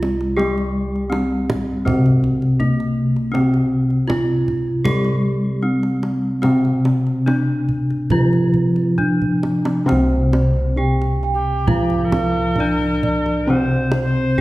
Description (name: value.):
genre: Javanese gamelan.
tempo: 66-81 BPM.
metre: 4/4.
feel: straight.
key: C slendro.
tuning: A4 = 440 Hz.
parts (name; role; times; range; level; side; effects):
gamelan-type bronze metallophone; melody; 0.0-14.4 s; Bb3-45c to G4+25c; -21 LUFS; equal; none.
gamelan-type bronze metallophone; accompaniment; 0.0-14.4 s; C3 to G3+25c; -21 LUFS; left 1 dB; none.
gamelan-type bossed gongs; bass; 0.0-14.4 s; C2 to G4+25c; -22 LUFS; equal; none.
kendang; percussion; 0.0-14.4 s; none; -26 LUFS; right 1 dB; none.
gamelan-type bronze metallophone; arpeggios; 9.9-14.4 s; C5 to G5+25c; -25 LUFS; right 4 dB; none.
bright tenor recorder; second line; 11.3-14.4 s; G4+22c to C5; -25 LUFS; left 2 dB; none.
room: wet recital hall reverb, RT60 1.6 s.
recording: heard from further back in the room.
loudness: -16 LUFS.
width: side -18 dB against mid.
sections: 0.0-9.9 A section; 9.9-14.4 B section.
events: drum fill 9.0-9.9.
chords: none.